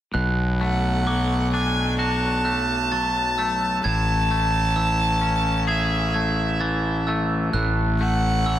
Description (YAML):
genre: rock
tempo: 65 BPM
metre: 4/4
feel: straight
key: unclear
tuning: A4 = 440 Hz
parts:
  - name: glockenspiel with hard plastic mallets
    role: arpeggios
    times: 0.1-8.6 s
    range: D6 to A6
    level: -29 LUFS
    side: right 5 dB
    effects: slapback echo, digital delay
  - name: twangy electric guitar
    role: arpeggios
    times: 0.1-8.6 s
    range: A2 to G#4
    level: -28 LUFS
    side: left 4 dB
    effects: slapback echo, digital delay
  - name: fuzz fingered electric bass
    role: bass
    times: 0.1-8.6 s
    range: A1 to B1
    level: -23 LUFS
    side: equal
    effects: overdrive
  - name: clear violin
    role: melody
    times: 0.6-8.6 s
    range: E5 to A5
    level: -24 LUFS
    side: equal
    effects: digital delay
room: moderate lush hall reverb, RT60 1.8 s, small room ambience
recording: big arena sound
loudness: -20 LUFS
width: side -12 dB against mid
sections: 0.1-8.6 A section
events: none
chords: 0.1 Bm7; 3.8 Amaj7; 7.5 F#m7/A